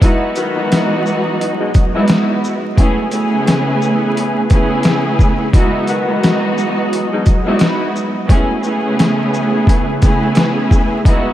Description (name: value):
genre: hip hop, boom-bap hip-hop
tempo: 87 BPM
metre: 4/4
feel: swing 57% on 16ths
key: E major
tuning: A4 = 439 Hz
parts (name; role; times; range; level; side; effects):
- rich studio string section; accompaniment; 0.0-11.3 s; E3 to G#4; -16 LUFS; right 1 dB; cassette tape, high-pass filter, low-pass filter
- lush unison pad; sustained chords; 0.3-11.3 s; C#3 to D#5; -22 LUFS; right 1 dB; chorus, high-pass filter, low-pass filter
- boom bap sampler-style drum kit; drums; 0.0-11.2 s; hi-hat, kick drum, shaker, snare drum; -14 LUFS; equal; overdrive
- mellow saxophone section; stabs; 0.4-7.6 s; B2 to F#4; -24 LUFS; left 3 dB; high-pass filter, low-pass filter, ping-pong delay
room: moderate huge ambient reverb, RT60 4.8 s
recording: dreamy mix soaked in reverb, vinyl crackle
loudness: -12 LUFS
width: side -13 dB against mid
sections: 0.0-11.3 A section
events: none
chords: 0.0 Emaj9; 2.8 Amaj9; 5.5 Emaj9; 8.3 Amaj9